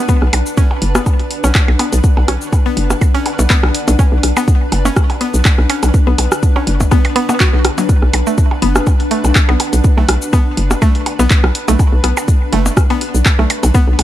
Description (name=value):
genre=minimal techno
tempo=123 BPM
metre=4/4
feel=swing 54% on 16ths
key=B minor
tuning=A4 = 440 Hz
part: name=mallet-like synth pluck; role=riff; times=0.0-13.8 s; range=F#3 to F#4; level=-20 LUFS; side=equal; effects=chorus, sidechain pumping, digital delay
part: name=granular cloud pad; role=texture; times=0.0-14.0 s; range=D4 to F#5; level=-22 LUFS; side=left 2 dB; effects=built-in reverb, sidechain pumping
part: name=electronic kick drum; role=drums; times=0.1-13.9 s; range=none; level=-12 LUFS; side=equal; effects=none
part: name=punchy analog drum machine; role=drums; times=0.1-14.0 s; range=handclaps, hi-hat, shaker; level=-20 LUFS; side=equal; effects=overdrive
part: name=hollow knocking FM bass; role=bass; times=0.2-14.0 s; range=F#1 to B1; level=-14 LUFS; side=equal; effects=sidechain pumping
part: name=electronic rim click and percussion blips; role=percussion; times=0.2-14.0 s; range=none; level=-20 LUFS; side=right 2 dB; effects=tape echo
room=little or no reverb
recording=none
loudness=-11 LUFS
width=side -13 dB against mid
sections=0.0-14.0 A section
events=none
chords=0.0 Bm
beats=| 0.09 0.57 1.06 1.55 | 2.04 2.52 3.01 3.50 | 3.99 4.48 4.96 5.45 | 5.94 6.43 6.92 7.40 | 7.89 8.38 8.87 9.36 | 9.84 10.33 10.82 11.31 | 11.79 12.28 12.77 13.26 | 13.74